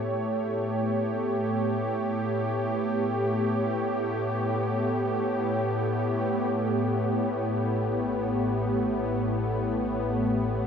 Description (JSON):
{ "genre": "ambient", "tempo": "free time", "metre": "none", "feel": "none", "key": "unclear", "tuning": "A4 = 441 Hz", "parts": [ { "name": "warm analog pad", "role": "sustained chords", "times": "0.0-10.7 s", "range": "A2 to C#5", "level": "-25 LUFS", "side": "equal", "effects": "chorus" }, { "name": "round analog bass", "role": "bass", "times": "6.5-10.7 s", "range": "A1", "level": "-44 LUFS", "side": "left 1 dB", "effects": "none" } ], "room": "wet huge ambient reverb, RT60 8.9 s", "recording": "none", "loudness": "-25 LUFS", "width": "side -7 dB against mid", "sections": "0.0-6.5 A section; 6.5-10.7 B section", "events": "none", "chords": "0.0 A7", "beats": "free time" }